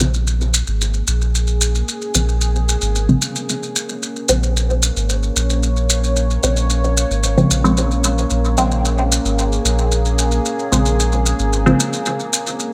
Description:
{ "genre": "dub techno", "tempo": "112 BPM", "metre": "4/4", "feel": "straight", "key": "Bb minor", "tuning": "A4 = 440 Hz", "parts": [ { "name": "deep dark ambient pad", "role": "sustained chords", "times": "0.8-12.7 s", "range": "Bb3 to Db5", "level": "-26 LUFS", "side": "equal", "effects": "chorus, built-in reverb" }, { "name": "filtered dub chord stab", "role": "stabs", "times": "0.0-11.9 s", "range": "Db3 to C4", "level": "-22 LUFS", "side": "equal", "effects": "phaser, dub echo" }, { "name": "soft dub sub bass", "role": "bass", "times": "0.0-11.7 s", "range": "Ab1 to Bb1", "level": "-20 LUFS", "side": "equal", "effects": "none" }, { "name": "maracas", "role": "percussion", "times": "0.0-12.7 s", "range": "none", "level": "-23 LUFS", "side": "equal", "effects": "none" } ], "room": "light reverb, digital ambience", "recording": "bright 1980s-style digital production", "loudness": "-18 LUFS", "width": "mono", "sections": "0.0-12.7 A section", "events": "filter sweep on synth stab 0.0-12.7", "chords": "0.0 Bbm7", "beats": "0.27 0.81 1.35 | 1.88 2.42 2.95 3.49 | 4.02 4.56 5.10 5.63 | 6.17 6.70 7.24 7.77 | 8.31 8.85 9.38 9.92 | 10.45 10.99 11.52 12.06 | 12.60" }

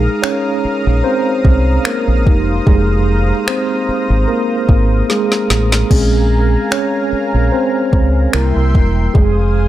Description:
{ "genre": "contemporary R&B", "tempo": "74 BPM", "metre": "4/4", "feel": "swing 54% on 16ths", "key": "F minor", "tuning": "A4 = 440 Hz", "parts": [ { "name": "mellow tine electric piano", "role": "accompaniment", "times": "0.0-9.7 s", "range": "G3 to Db5", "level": "-16 LUFS", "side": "right 1 dB", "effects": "medium stereo tremolo" }, { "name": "lush unison pad", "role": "sustained chords", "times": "0.0-9.7 s", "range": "Bb4 to Eb6", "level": "-23 LUFS", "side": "left 1 dB", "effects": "chorus" }, { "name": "deep dub fingered electric bass", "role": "bass", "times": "0.0-9.7 s", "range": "E1 to Db2", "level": "-14 LUFS", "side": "equal", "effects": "none" }, { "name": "smooth R&B drum kit", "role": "drums", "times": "0.2-9.4 s", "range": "crash cymbal, finger snaps, kick drum, snare drum", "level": "-14 LUFS", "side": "equal", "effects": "none" } ], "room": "digital ambience", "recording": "none", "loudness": "-12 LUFS", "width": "side -13 dB against mid", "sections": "0.0-9.7 A section", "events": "break 0.0-5.9; tine electric piano solo 0.0-9.7; drum fill 5.1-5.9", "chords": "0.0 Bb7sus4; 2.3 Fm7; 5.9 Bbm7; 8.3 C7; 9.2 Fm7", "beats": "0.23 1.04 1.85 | 2.66 3.48 4.29 5.10 | 5.91 6.72 7.53 8.34 | 9.15" }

